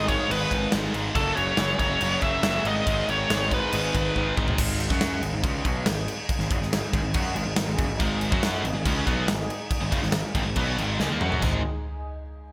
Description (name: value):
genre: hard rock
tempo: 140 BPM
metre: 4/4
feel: straight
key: G# minor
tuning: A4 = 442 Hz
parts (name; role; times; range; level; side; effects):
- biting lead guitar; melody; 0.0-4.3 s; A4 to E5; -29 LUFS; equal; overdrive, digital delay
- sweeping resonant pad; sustained chords; 0.0-11.6 s; F#3 to G#4; -40 LUFS; equal; chorus
- distorted electric guitar; riff; 0.0-11.6 s; F#2 to F#4; -34 LUFS; equal; distortion
- tight distorted guitar; riff; 0.0-4.6, 8.0-11.6 s; F#2 to F#4; -33 LUFS; equal; distortion
- fuzz picked electric bass; bass; 0.0-11.6 s; F#1 to F#2; -32 LUFS; equal; overdrive
- big rock drum kit; drums; 0.1-11.5 s; crash cymbal, kick drum, snare drum, splash cymbal, toms; -29 LUFS; equal; gated reverb
room: light reverb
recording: bright 1980s-style digital production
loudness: -25 LUFS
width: mono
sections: 0.0-4.6 A section; 4.6-11.4 B section; 11.4-12.5 C section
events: drum fill 4.2-4.6, 11.0-11.4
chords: 0.0 G#m; 1.1 F#5; 2.7 G#m; 11.4 G#5